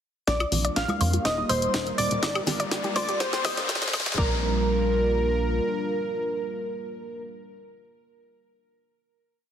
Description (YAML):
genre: progressive house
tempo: 123 BPM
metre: 4/4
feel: straight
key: Bb major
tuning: A4 = 440 Hz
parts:
  - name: plucky unison lead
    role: melody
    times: 0.3-7.2 s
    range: Bb4 to F5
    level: -29 LUFS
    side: right 1 dB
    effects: ping-pong delay
  - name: glassy wavetable pluck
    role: second line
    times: 0.3-7.2 s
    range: Bb5 to F6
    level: -34 LUFS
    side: equal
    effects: chorus, sidechain pumping, digital delay
  - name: warm analog pad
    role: sustained chords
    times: 0.3-7.2 s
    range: G3 to Bb4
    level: -32 LUFS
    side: right 2 dB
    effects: chorus, sidechain pumping
  - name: analog pluck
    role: arpeggios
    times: 0.3-7.2 s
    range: Eb4 to Eb5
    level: -33 LUFS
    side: left 1 dB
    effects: chorus, sidechain pumping, digital delay
  - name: tight sequencer bass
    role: bass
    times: 0.3-5.6 s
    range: Eb1 to F2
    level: -29 LUFS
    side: equal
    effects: sidechain pumping
  - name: electronic kick drum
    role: drums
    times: 0.3-4.3 s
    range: none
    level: -30 LUFS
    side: equal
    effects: high-pass filter on kick, high-pass filter on room
  - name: house drum kit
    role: drums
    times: 0.3-4.2 s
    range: hi-hat, snare drum, woodblock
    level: -30 LUFS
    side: left 1 dB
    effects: none
  - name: riser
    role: sound effects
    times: 1.4-4.2 s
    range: none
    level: -34 LUFS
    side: left 2 dB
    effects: none
  - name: woodblock and congas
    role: percussion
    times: 0.4-4.0 s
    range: none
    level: -34 LUFS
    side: right 2 dB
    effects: sidechain pumping on perc
room: moderate lush hall reverb, RT60 2.6 s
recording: heavily compressed radio sound, high-pass filter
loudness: -23 LUFS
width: side -9 dB against mid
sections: 0.3-4.2 build; 4.2-8.1 final chord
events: build-up 0.3-4.2; drum fill 0.3-4.2; filter sweep on synth arpeggio sound 0.3-4.2; filter sweep on digital synth lead 0.3-4.2; filter sweep 0.3-4.2; riser 1.4-4.2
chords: 0.3 Bb6; 1.3 Eb; 2.2 Gm7; 3.2 Cm7; 4.2 Bb6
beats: | 0.28 0.76 1.25 1.74 | 2.23 2.71 3.20 3.69 | 4.18 4.67 5.15 5.64 | 6.13 6.62 7.11